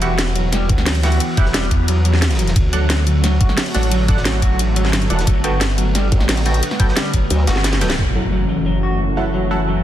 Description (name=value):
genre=dark technical drum and bass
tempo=177 BPM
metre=4/4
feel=straight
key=F# phrygian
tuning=A4 = 440 Hz
part: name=sweeping resonant pad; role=sustained chords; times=0.0-9.8 s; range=D3 to F#4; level=-24 LUFS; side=equal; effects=chorus, vintage 12-bit sampler grit, sidechain pumping
part: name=electric guitar through a small old amp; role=arpeggios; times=0.0-9.8 s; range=F#3 to F#4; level=-24 LUFS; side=left 1 dB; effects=sidechain pumping, tape echo
part: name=band-passed chord stab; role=stabs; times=0.0-9.6 s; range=B3 to G5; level=-26 LUFS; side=right 3 dB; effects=chorus, phaser, tape echo
part: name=snarling distorted saw bass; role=bass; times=0.0-9.8 s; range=E1 to E2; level=-18 LUFS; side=equal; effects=distortion, overdrive
part: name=crunchy breakbeat drum kit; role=drums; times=0.0-8.0 s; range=hi-hat, ride cymbal, snare drum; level=-30 LUFS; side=equal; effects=high-pass filter on cymbals, high-pass filter on hats, high-pass filter on snare, high-pass filter on room
part: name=drum and bass drum kit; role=drums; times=0.0-8.0 s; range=hi-hat, snare drum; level=-22 LUFS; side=equal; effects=none
part: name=electronic kick drum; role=drums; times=0.7-7.2 s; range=none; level=-17 LUFS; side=equal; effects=none
part: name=formant-sweep wobble bass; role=bass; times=5.1-7.5 s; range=E1 to D2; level=-17 LUFS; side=equal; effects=chorus
part: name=impact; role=sound effects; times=8.0-9.3 s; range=none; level=-24 LUFS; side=equal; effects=none
room=light reverb, digital ambience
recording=dense, heavily limited modern master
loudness=-14 LUFS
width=side -12 dB against mid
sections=0.0-8.0 A section; 8.0-9.8 B section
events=drum fill 7.6-8.0; band accent 7.9; impact 8.0-9.3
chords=0.0 Emadd9; 2.6 D; 5.3 Gadd9; 8.0 F#m7